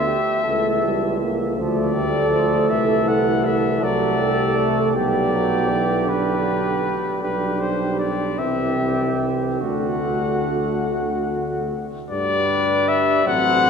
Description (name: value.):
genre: classical, brass quintet.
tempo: 48-54 BPM (dotted quarters).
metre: 6/8.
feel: rubato.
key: G major.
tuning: A4 = 437 Hz.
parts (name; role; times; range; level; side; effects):
clear trumpet; melody; 0.0-13.7 s; B4 to F#5; -23 LUFS; left 5 dB; none.
warm flugelhorn; second line; 0.0-13.7 s; F#4 to C5; -26 LUFS; right 6 dB; none.
clear trombone; accompaniment; 0.0-13.7 s; D3 to A3; -26 LUFS; right 3 dB; none.
mellow French horn; accompaniment; 0.0-13.7 s; G3 to D4; -26 LUFS; left 3 dB; none.
warm tuba; bass; 0.0-13.7 s; A1 to G2; -25 LUFS; right 2 dB; none.
room: wet cathedral reverb, RT60 6.9 s.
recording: recorded in a church or concert hall.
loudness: -18 LUFS.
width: side -6 dB against mid.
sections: 0.0-12.1 A section; 12.1-13.7 B section.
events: none.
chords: 0.5 A7/C#; 1.6 Dm; 2.7 Am/C; 3.8 D7/C; 5.0 G/B; 8.4 C; 9.6 D; 12.1 G.